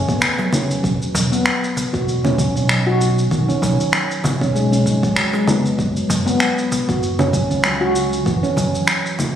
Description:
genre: organic downtempo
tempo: 97 BPM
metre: 4/4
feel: swing 56% on 16ths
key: unclear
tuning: A4 = 440 Hz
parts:
  - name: handpan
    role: arpeggios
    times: 0.0-9.2 s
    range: D#3 to F#4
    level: -19 LUFS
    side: equal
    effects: low-pass filter, tape echo
  - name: fretless electric bass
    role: bass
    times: 0.0-8.7 s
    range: E1 to C#2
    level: -21 LUFS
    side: equal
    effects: sidechain pumping
  - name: electronic kick drum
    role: drums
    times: 0.1-8.7 s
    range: none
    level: -25 LUFS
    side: equal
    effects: overdrive
  - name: electronic shaker, finger snaps and congas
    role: drums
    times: 0.1-9.3 s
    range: none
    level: -21 LUFS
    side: equal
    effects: overdrive
  - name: cajon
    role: percussion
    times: 0.4-9.3 s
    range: none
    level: -28 LUFS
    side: right 2 dB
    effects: none
room: moderate lush hall reverb, RT60 1.6 s, digital ambience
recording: recorded on a phone in the room, studio reverb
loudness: -15 LUFS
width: side -9 dB against mid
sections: 0.0-9.4 A section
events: none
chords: 0.0 F#5; 0.8 E5; 3.3 B5; 5.8 F#5

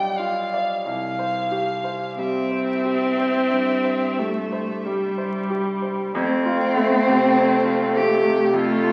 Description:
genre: classical, slow romantic movement for piano quartet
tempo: 44-52 BPM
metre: 4/4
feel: rubato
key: F major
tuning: A4 = 438 Hz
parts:
  - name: rich violin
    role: melody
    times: 0.0-8.9 s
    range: A4 to G5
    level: -30 LUFS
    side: equal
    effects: none
  - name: warm cello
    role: second line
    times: 0.0-8.9 s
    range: G3 to G4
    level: -22 LUFS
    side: equal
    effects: none
  - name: clear concert grand piano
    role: accompaniment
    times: 0.0-8.9 s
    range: B1 to D5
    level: -27 LUFS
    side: equal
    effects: none
  - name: warm viola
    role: accompaniment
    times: 0.0-8.9 s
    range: G3 to D4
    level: -26 LUFS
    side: equal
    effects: none
room: wet recital hall reverb, RT60 1.4 s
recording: very old 78 rpm record, vinyl crackle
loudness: -22 LUFS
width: mono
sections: 0.0-6.2 A section; 6.2-8.9 B section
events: none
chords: 0.0 G7/B; 0.8 C; 6.2 F

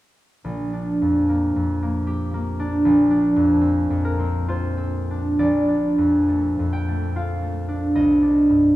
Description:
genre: classical, solo harp piece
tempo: 62-80 BPM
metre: 3/4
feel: rubato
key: Bb major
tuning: A4 = 440 Hz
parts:
  - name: concert harp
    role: solo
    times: 0.4-8.8 s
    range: Bb1 to G5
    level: -18 LUFS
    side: equal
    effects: none
room: wet recital hall reverb, RT60 1.6 s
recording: heard from further back in the room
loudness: -18 LUFS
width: side -16 dB against mid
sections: 0.4-5.4 A section; 5.4-8.8 B section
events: none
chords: 0.4 Bb6; 2.8 Dm7/Bb; 5.4 Bbmaj7; 8.0 Cmadd9

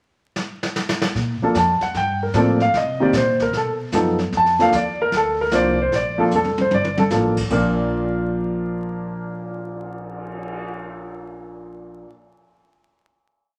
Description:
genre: jazz piano trio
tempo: 151 BPM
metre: 4/4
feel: swing 66% on 8ths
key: Bb major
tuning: A4 = 441 Hz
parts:
  - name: jazz brush drum kit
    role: drums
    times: 0.4-10.6 s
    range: brushed snare drum, crash cymbal, cymbal swell, hi-hat, kick drum, snare drum, toms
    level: -29 LUFS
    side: equal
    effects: none
  - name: upright bass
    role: bass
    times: 1.1-12.0 s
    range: F1 to C3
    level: -29 LUFS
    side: equal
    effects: none
  - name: warm grand piano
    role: melody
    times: 1.4-12.1 s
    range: Bb2 to A5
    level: -22 LUFS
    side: equal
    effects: none
room: moderate large studio reverb, RT60 1.2 s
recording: vinyl crackle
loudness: -20 LUFS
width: mono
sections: 0.0-1.1 pickup bar; 1.1-7.5 A section; 7.5-10.7 final chord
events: drum fill 0.4-1.1, 6.3-7.1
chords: 0.0 N.C.; 1.1 Bbmaj7(no3); 1.9 Gm11; 2.7 Cm7; 3.5 B7#11; 4.3 Bbmaj7; 7.5 Bb

